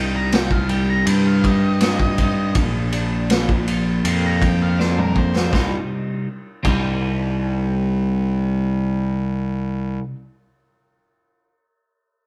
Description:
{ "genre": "psychedelic rock", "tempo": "80 BPM", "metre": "4/4", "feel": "straight", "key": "C minor", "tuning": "A4 = 441 Hz", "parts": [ { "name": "octave-fuzz lead guitar", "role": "melody", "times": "0.0-5.5 s", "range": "Bb4 to C6", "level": "-29 LUFS", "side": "equal", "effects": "distortion, analog delay" }, { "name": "twelve-string electric guitar", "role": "riff", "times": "0.0-10.2 s", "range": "Bb2 to Eb4", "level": "-27 LUFS", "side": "equal", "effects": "none" }, { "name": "fuzz picked electric bass", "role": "bass", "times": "0.0-10.0 s", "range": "Bb1 to G2", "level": "-23 LUFS", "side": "equal", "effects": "overdrive" }, { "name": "vintage drum kit", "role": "drums", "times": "0.3-6.9 s", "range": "crash cymbal, kick drum, ride cymbal, snare drum, toms", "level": "-24 LUFS", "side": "equal", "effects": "none" } ], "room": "moderate stone room reverb, RT60 1.1 s", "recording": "band playing live in one room", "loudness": "-20 LUFS", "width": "mono", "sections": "0.0-5.5 A section; 5.5-8.5 B section", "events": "lead electric guitar solo 0.0-5.5; drum fill 4.8-5.5", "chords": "0.0 Cm; 2.6 Bb; 5.5 Cm" }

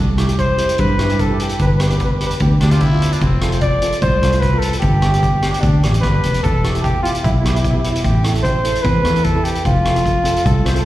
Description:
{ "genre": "calypso", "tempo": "149 BPM", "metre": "4/4", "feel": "straight", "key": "C major", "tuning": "A4 = 440 Hz", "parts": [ { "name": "fingered electric bass", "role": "bass", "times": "0.0-10.8 s", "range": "E1 to G2", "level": "-16 LUFS", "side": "equal", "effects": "none" }, { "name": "steel pan", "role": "accompaniment", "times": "0.2-10.8 s", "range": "B3 to C5", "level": "-24 LUFS", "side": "right 2 dB", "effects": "slapback echo" }, { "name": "street-band drum kit", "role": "drums", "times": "0.2-10.8 s", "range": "hi-hat, kick drum, rim click", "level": "-20 LUFS", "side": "equal", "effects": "none" }, { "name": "trumpet with bucket mute", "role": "melody", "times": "0.4-10.7 s", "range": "D4 to D5", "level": "-20 LUFS", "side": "equal", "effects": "slapback echo" }, { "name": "growling trumpet", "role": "second line", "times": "2.6-3.5 s", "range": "C4 to F4", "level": "-27 LUFS", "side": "left 1 dB", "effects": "slapback echo" } ], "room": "little or no reverb", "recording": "live gig heard through the venue's PA, recital hall reverb", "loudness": "-13 LUFS", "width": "side -15 dB against mid", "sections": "0.0-10.8 A section", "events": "muted trumpet solo 0.0-10.8", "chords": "0.0 Cmaj7; 1.6 G7; 3.2 F; 4.8 G; 6.4 Em; 8.0 Am; 9.7 F" }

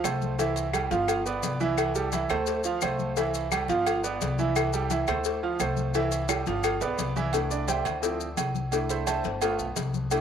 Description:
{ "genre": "latin, salsa", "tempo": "173 BPM", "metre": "4/4", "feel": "straight", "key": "C major", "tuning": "A4 = 441 Hz", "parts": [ { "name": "bright upright piano", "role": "accompaniment", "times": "0.0-10.2 s", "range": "E3 to A5", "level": "-28 LUFS", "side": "right 4 dB", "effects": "cassette tape" }, { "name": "upright bass", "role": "bass", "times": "0.0-10.2 s", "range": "G1 to D2", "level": "-32 LUFS", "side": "left 2 dB", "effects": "none" }, { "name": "claves", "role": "percussion", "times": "0.0-6.8 s", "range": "none", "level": "-37 LUFS", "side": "left 14 dB", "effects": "none" }, { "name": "congas", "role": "percussion", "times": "0.0-10.2 s", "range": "none", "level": "-38 LUFS", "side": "left 13 dB", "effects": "none" }, { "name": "cowbell", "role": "percussion", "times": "0.0-10.2 s", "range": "none", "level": "-33 LUFS", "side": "left 12 dB", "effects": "none" }, { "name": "maracas", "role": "percussion", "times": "0.0-10.2 s", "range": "none", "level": "-38 LUFS", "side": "left 13 dB", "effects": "none" }, { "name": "timbales and agogo bells", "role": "percussion", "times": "0.0-10.2 s", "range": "none", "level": "-33 LUFS", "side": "right 7 dB", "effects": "none" } ], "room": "wet spring reverb, RT60 2.8 s", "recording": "home recording on cassette", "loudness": "-25 LUFS", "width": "side -8 dB against mid", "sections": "0.0-7.3 A section; 7.3-10.2 B section", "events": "drum fill 6.3-7.3; upright piano solo 7.3-10.2", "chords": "0.4 C6; 1.1 G7; 1.8 C6; 2.5 Dm7; 3.2 C6; 3.9 G7; 4.6 C6; 5.3 Dm7; 5.9 C6; 6.6 G7; 7.3 C6; 8.0 Dm7; 8.7 C6; 9.4 G7" }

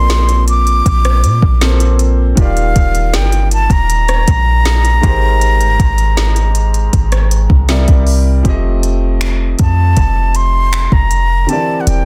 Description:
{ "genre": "contemporary R&B", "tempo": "79 BPM", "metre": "4/4", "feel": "straight", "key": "unclear", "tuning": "A4 = 442 Hz", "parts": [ { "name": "breathy concert flute", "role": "melody", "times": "0.0-12.1 s", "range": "F5 to D6", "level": "-19 LUFS", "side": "equal", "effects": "none" }, { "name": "clear concert grand piano", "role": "accompaniment", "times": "0.0-12.1 s", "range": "Ab2 to Eb5", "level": "-23 LUFS", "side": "equal", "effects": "none" }, { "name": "clean 808-style bass", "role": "bass", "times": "0.0-12.1 s", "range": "Eb1 to Bb2", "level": "-15 LUFS", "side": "equal", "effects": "none" }, { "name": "smooth R&B drum kit", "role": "drums", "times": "0.1-12.0 s", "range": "finger snaps, hi-hat, kick drum, rim click, snare drum", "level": "-17 LUFS", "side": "equal", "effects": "soft clipping on snare" } ], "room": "little or no reverb", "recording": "dense, heavily limited modern master", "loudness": "-12 LUFS", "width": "mono", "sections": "0.0-8.4 A section; 8.4-12.1 B section", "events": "none", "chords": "0.0 Bbmaj9; 2.4 Ebmaj9; 5.0 Abmaj7; 7.7 C9; 8.4 F7; 11.5 C7/E" }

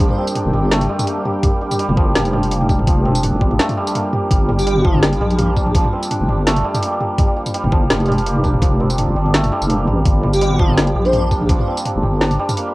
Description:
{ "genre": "half-time drum and bass", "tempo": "167 BPM", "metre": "4/4", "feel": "swing 54% on 16ths, half-time", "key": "G minor", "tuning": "A4 = 440 Hz", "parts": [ { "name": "dark analog pad", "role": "sustained chords", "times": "0.0-12.7 s", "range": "G3 to G5", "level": "-28 LUFS", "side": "equal", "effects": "chorus, sidechain pumping, cassette tape" }, { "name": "santur", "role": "arpeggios", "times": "0.0-12.7 s", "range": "F3 to G4", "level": "-20 LUFS", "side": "right 1 dB", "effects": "vintage 12-bit sampler grit, cassette tape, analog delay" }, { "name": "deep soft wobble bass", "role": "bass", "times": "0.0-12.4 s", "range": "F1 to Bb1", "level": "-18 LUFS", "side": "equal", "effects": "chorus" }, { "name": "electronic kick drum", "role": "drums", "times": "0.0-11.6 s", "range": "none", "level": "-16 LUFS", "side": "equal", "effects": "overdrive, cassette tape" }, { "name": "drum and bass drum kit", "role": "drums", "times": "0.1-12.7 s", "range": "hi-hat, snare drum, tambourine, toms", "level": "-21 LUFS", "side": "equal", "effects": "overdrive, cassette tape" }, { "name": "airy dreamy lead", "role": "melody", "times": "4.6-4.9, 10.3-11.2 s", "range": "G4 to C5", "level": "-22 LUFS", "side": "equal", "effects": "chorus, tape echo" } ], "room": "light reverb", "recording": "home recording on cassette", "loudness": "-14 LUFS", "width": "side -20 dB against mid", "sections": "0.0-12.7 A section", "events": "break 3.6-4.3", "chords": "0.0 Gm" }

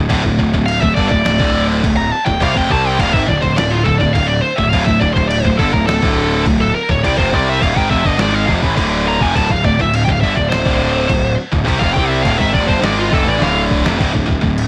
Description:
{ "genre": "heavy metal", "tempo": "104 BPM", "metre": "4/4", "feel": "straight", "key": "D minor", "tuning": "A4 = 440 Hz", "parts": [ { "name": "heavy high-gain guitar", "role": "riff", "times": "0.0-14.7 s", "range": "D2 to C4", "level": "-20 LUFS", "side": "equal", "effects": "distortion" }, { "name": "fuzz picked electric bass", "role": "bass", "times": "0.0-14.7 s", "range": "D1 to C2", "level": "-21 LUFS", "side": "equal", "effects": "overdrive" }, { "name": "lo-fi sampler-style drum kit", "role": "drums", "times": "0.1-14.7 s", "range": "crash cymbal, kick drum, snare drum", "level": "-22 LUFS", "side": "equal", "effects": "none" }, { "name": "high-gain lead guitar", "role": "melody", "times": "0.7-13.6 s", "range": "F4 to Bb5", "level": "-20 LUFS", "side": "equal", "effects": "distortion" } ], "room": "little or no reverb", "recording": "none", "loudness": "-15 LUFS", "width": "mono", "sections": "0.0-14.0 A section", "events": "lead electric guitar solo 0.0-14.0; drum fill 13.4-14.0", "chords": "0.0 Dm; 14.0 D5" }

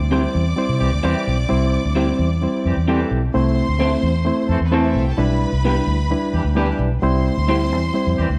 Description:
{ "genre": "soul", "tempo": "130 BPM", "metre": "4/4", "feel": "straight", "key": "unclear", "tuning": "A4 = 439 Hz", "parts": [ { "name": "bright studio string section", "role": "second line", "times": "0.0-8.4 s", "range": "B3 to D6", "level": "-31 LUFS", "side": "equal", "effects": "none" }, { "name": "vintage muted fingered electric bass", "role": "bass", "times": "0.0-8.4 s", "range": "B1 to C3", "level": "-22 LUFS", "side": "equal", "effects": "none" }, { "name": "barky reed electric piano", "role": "accompaniment", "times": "0.1-8.3 s", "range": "G3 to C5", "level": "-23 LUFS", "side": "equal", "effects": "overdrive, spring reverb" }, { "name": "electric guitar through a small old amp", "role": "stabs", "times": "0.1-7.6 s", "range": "B3 to C5", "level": "-27 LUFS", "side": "equal", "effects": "none" }, { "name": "clear horn section", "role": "second line", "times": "0.8-8.3 s", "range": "E3 to A4", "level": "-30 LUFS", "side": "equal", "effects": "none" } ], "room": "moderate large studio reverb, RT60 1.2 s", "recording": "dark, warm production", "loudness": "-19 LUFS", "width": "mono", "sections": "0.0-8.4 A section", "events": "none", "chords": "0.0 C; 3.3 Am/C; 5.2 Em7/B; 7.0 C" }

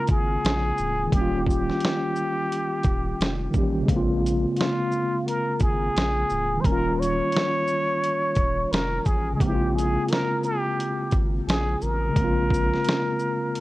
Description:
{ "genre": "lo-fi hip hop", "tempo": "87 BPM", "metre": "4/4", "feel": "swing 60% on 16ths", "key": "Bb dorian", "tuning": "A4 = 441 Hz", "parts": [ { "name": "trumpet with plunger mute", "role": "melody", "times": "0.0-13.6 s", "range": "F4 to Db5", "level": "-26 LUFS", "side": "equal", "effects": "none" }, { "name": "mellow tine electric piano", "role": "accompaniment", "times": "0.0-13.6 s", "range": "Db3 to G4", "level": "-26 LUFS", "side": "equal", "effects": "medium stereo tremolo" }, { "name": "saturated sub bass", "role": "bass", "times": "0.1-12.7 s", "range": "D1 to Bb1", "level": "-28 LUFS", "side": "equal", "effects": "transformer saturation" }, { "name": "dusty soul sampler-style drum kit", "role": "drums", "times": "0.1-13.6 s", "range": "hi-hat, kick drum, shaker, snare drum", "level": "-25 LUFS", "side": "equal", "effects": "none" } ], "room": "light reverb", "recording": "worn, warbling old tape, cassette tape, warbly pitch drift", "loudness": "-21 LUFS", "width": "side -18 dB against mid", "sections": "0.0-13.6 A section", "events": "none", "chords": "0.0 Bbm7; 1.1 Eb7; 3.9 Bbm7; 6.6 Eb7; 9.4 Bbm9" }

